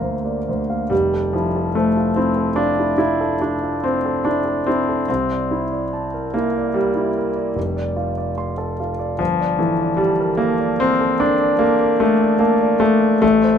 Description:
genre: classical, impressionist solo piano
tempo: 73 BPM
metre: 5/4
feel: rubato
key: F major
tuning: A4 = 439 Hz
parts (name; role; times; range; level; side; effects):
- clear concert grand piano; solo; 0.0-13.6 s; F1 to A6; -16 LUFS; equal; none
room: light reverb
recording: none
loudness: -17 LUFS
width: side -8 dB against mid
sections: 0.9-13.6 A section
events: none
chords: 0.0 Gm11; 0.9 Fmaj7; 5.1 C13; 7.6 F6; 9.2 Gmadd9

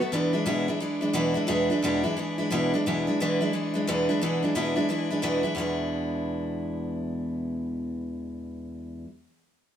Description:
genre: rock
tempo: 177 BPM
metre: 4/4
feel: swing 63% on 8ths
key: E mixolydian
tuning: A4 = 440 Hz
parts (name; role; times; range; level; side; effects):
- picked steel-string acoustic guitar; solo; 0.0-9.1 s; E2 to F#4; -25 LUFS; equal; none
room: moderate stone room reverb, RT60 1.1 s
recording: band playing live in one room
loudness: -24 LUFS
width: side -9 dB against mid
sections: 0.0-2.8 A section; 2.8-5.6 B section; 5.6-8.3 C section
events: none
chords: 0.1 E7

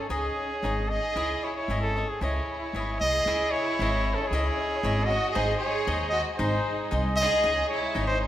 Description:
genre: mexican folk, mariachi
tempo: 114 BPM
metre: 2/4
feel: straight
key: C# harmonic minor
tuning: A4 = 440 Hz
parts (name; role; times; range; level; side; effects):
- clear trumpet; melody; 0.0-8.2 s; G#4 to D#5; -28 LUFS; equal; none
- rich studio violin section; second line; 0.0-8.2 s; B#3 to G#4; -32 LUFS; right 1 dB; none
- cavaquinho; accompaniment; 0.0-8.3 s; D#4 to D#5; -32 LUFS; left 2 dB; none
- upright bass; bass; 0.1-8.3 s; G#1 to D#2; -30 LUFS; equal; none
- dark chamber violin section; sustained chords; 3.2-8.3 s; G#3 to D#5; -38 LUFS; equal; none
room: wet recital hall reverb, RT60 1.3 s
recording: recorded in a church or concert hall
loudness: -24 LUFS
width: side -12 dB against mid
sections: 0.0-3.3 A section; 3.3-8.3 A section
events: none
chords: 0.0 C#sus2; 1.2 C#madd9; 5.3 G#; 7.4 C#sus2

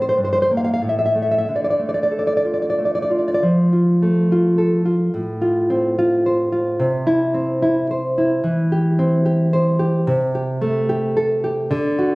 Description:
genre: romantic piece for solo classical guitar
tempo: 90-112 BPM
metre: 3/4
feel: rubato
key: D minor, F major from 3.4 s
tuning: A4 = 440 Hz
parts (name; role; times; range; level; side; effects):
- nylon-string guitar; solo; 0.0-12.2 s; G2 to F5; -16 LUFS; equal; none
room: light reverb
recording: recorded on a phone in the room, studio reverb, compression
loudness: -16 LUFS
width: side -23 dB against mid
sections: 0.0-3.4 A section; 3.4-12.2 B section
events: none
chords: 0.2 Gmadd11; 0.8 N.C.; 1.5 Dm; 3.4 F; 5.1 F/A; 6.8 C; 8.4 C/E; 10.1 Am7/C

